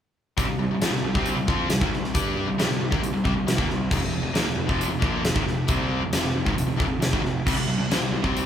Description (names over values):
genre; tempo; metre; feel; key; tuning
classic rock; 136 BPM; 4/4; straight; unclear; A4 = 436 Hz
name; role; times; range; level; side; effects
cranked stack guitar; riff; 0.4-8.5 s; F2 to G4; -28 LUFS; left 6 dB; overdrive
sludgy distorted guitar; riff; 0.4-8.4 s; F2 to G4; -28 LUFS; right 6 dB; overdrive
fuzz picked electric bass; bass; 0.4-8.4 s; F1 to G2; -30 LUFS; equal; overdrive
huge arena drum kit; drums; 0.4-8.5 s; crash cymbal, hi-hat, kick drum, snare drum; -25 LUFS; equal; none
room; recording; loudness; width
moderate large studio reverb, RT60 1.5 s; band playing live in one room; -22 LUFS; side -9 dB against mid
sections
0.4-8.5 A section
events
none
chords
0.4 C5; 3.9 F5; 7.5 C5